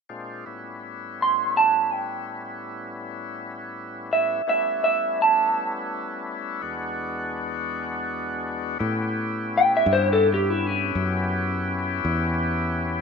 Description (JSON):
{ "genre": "slow blues", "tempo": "55 BPM (dotted quarters)", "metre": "12/8", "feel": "straight", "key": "A mixolydian", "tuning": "A4 = 440 Hz", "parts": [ { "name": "overdriven tonewheel organ", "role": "sustained chords", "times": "0.1-13.0 s", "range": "E2 to G4", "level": "-29 LUFS", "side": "left 2 dB", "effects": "slow rotary speaker" }, { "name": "electric guitar through a small old amp", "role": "melody", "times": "1.2-11.0 s", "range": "C#4 to C6", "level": "-20 LUFS", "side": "right 1 dB", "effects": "none" }, { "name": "fretless electric bass", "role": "bass", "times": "8.8-13.0 s", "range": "E2 to A2", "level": "-26 LUFS", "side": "left 1 dB", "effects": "none" } ], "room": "light reverb", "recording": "rough home demo mix", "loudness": "-22 LUFS", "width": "side -5 dB against mid", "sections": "0.1-8.8 A section; 8.8-13.0 B section", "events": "none", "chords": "0.1 A7; 6.6 E7; 8.8 A7" }